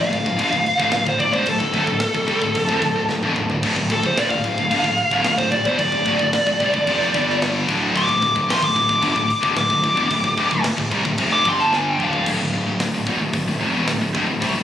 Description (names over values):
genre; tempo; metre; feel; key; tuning
heavy metal; 111 BPM; 4/4; straight; D minor; A4 = 440 Hz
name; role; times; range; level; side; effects
dark smooth lead guitar; melody; 0.0-12.3 s; A4 to D6; -20 LUFS; equal; overdrive, digital delay
high-gain distorted guitar; riff; 0.0-14.6 s; D2 to G3; -27 LUFS; right 6 dB; distortion
scooped high-gain guitar; riff; 0.0-14.6 s; D2 to G3; -24 LUFS; left 6 dB; distortion
sludgy distorted guitar; riff; 0.0-14.6 s; D2 to G3; -29 LUFS; equal; none
fuzz picked electric bass; bass; 0.0-14.6 s; D1 to C2; -26 LUFS; equal; overdrive
tight metal drum kit; drums; 0.1-14.5 s; crash cymbal, hi-hat, kick drum, snare drum, toms; -27 LUFS; right 1 dB; none
room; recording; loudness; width
light reverb; recorded on a phone in the room, studio reverb; -17 LUFS; side -10 dB against mid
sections
0.0-12.3 A section; 12.3-14.6 B section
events
lead electric guitar solo 0.0-12.3; drum fill 3.1-3.6, 11.7-12.3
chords
0.0 Dm; 7.1 G5; 7.7 Dm; 11.5 G5; 12.0 Dm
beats
0.40 0.94 | 1.48 2.02 2.56 3.10 | 3.63 4.17 4.71 5.25 | 5.79 6.33 6.87 7.41 | 7.95 8.49 9.03 9.56 | 10.10 10.64 11.18 11.72 | 12.26 12.80 13.34 13.88 | 14.42